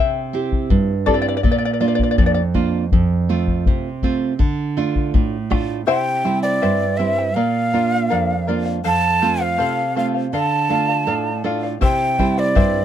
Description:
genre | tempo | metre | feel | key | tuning
andean folk, Andean ensemble | 81 BPM | 2/4 | straight | unclear | A4 = 440 Hz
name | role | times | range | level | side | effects
charango | accompaniment | 0.0-2.4, 5.9-12.8 s | E4 to G5 | -23 LUFS | left 6 dB | none
nylon-string guitar | accompaniment | 0.0-12.8 s | F2 to G4 | -20 LUFS | right 4 dB | none
bombo | percussion | 0.5-5.7, 11.8-12.7 s | none | -18 LUFS | left 2 dB | none
breathy mellow quena | melody | 5.9-12.8 s | D5 to A5 | -20 LUFS | right 1 dB | none
room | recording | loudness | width
little or no reverb | close, detailed microphones | -16 LUFS | side -10 dB against mid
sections
0.0-5.9 A section; 5.9-12.8 B section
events
charango solo 0.0-5.9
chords
0.0 C; 1.4 Bb; 2.9 F; 4.4 Dm; 5.9 C; 7.4 Bb; 8.8 F; 10.3 Dm; 11.8 C

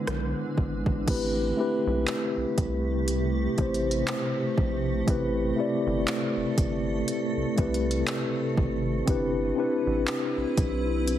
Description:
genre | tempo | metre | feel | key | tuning
contemporary R&B | 60 BPM | 4/4 | swing 58% on 16ths | A minor | A4 = 440 Hz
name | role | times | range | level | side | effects
mellow tine electric piano | accompaniment | 0.0-11.2 s | A3 to D5 | -27 LUFS | left 1 dB | medium stereo tremolo
granular cloud pad | sustained chords | 0.0-11.2 s | C3 to B4 | -33 LUFS | right 2 dB | built-in reverb
rubbery square bass | bass | 0.1-11.2 s | G1 to C2 | -31 LUFS | equal | none
smooth R&B drum kit | drums | 0.1-11.2 s | crash cymbal, handclaps, hi-hat, kick drum, rim click | -29 LUFS | equal | none
room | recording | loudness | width
light reverb | heavily compressed radio sound, multiband compression | -24 LUFS | side -11 dB against mid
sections
0.0-1.1 A section; 1.1-11.2 B section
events
none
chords
0.0 E7; 1.1 Am7; 9.1 Cmaj7/G

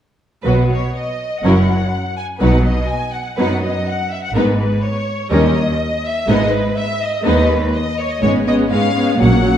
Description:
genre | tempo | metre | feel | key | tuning
quick classical-period movement for string orchestra | 123 BPM | 4/4 | straight | B major | A4 = 441 Hz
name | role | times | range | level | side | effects
rich chamber violin section | melody | 0.4-9.6 s | A#4 to G#5 | -21 LUFS | left 2 dB | none
rich chamber violin section | second line | 0.4-9.6 s | C#4 to C#5 | -22 LUFS | left 2 dB | none
rich symphonic viola section | accompaniment | 0.4-9.6 s | F#3 to C#4 | -19 LUFS | right 1 dB | none
clear chamber cello section | bass | 0.4-9.6 s | D#2 to B2 | -20 LUFS | right 1 dB | none
rich symphonic double bass section | bass | 0.4-9.6 s | F#1 to D#2 | -20 LUFS | right 2 dB | none
room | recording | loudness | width
wet recital hall reverb, RT60 1.3 s | dark, warm production | -14 LUFS | side -10 dB against mid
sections
0.4-9.6 A section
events
none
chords
0.4 B; 1.4 F#7; 2.4 B; 4.4 G#m; 5.3 D#7; 6.3 G#m; 8.2 C#7/G#

